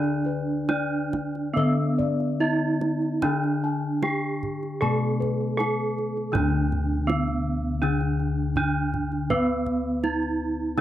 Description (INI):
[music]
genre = Javanese gamelan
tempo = 67-81 BPM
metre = 4/4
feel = straight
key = D pelog barang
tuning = A4 = 440 Hz
[part]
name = gamelan-type bronze metallophone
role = melody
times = 0.0-10.8 s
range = B3+20c to A4-40c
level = -27 LUFS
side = right 3 dB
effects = none
[part]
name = gamelan-type bronze metallophone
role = accompaniment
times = 0.0-10.8 s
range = D3 to B3+20c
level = -30 LUFS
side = left 4 dB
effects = none
[part]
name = gamelan-type bossed gongs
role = arpeggios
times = 0.0-6.0 s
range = B4+20c to A5-40c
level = -33 LUFS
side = left 5 dB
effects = none
[part]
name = gamelan-type bossed gongs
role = bass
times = 0.0-10.8 s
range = D2 to B4+20c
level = -28 LUFS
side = left 1 dB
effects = none
[part]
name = kendang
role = percussion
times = 0.0-10.8 s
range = none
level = -32 LUFS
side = right 3 dB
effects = none
[sound]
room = light reverb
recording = dry, close 1970s-style studio recording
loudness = -23 LUFS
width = side -12 dB against mid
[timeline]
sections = 0.0-6.3 A section; 6.3-10.8 B section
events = none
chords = none